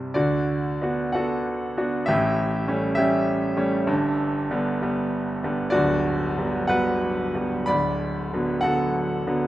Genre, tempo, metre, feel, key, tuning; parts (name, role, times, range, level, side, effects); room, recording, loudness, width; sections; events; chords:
classical, lyrical solo piano; 60-67 BPM (dotted quarters); 6/8; rubato; D major; A4 = 437 Hz
bright concert grand piano; solo; 0.0-9.5 s; D1 to B5; -21 LUFS; equal
light reverb; close, detailed microphones; -21 LUFS; side -14 dB against mid
0.1-9.5 A section
0.1 D6; 2.1 A7; 3.9 Gmaj7; 7.7 D6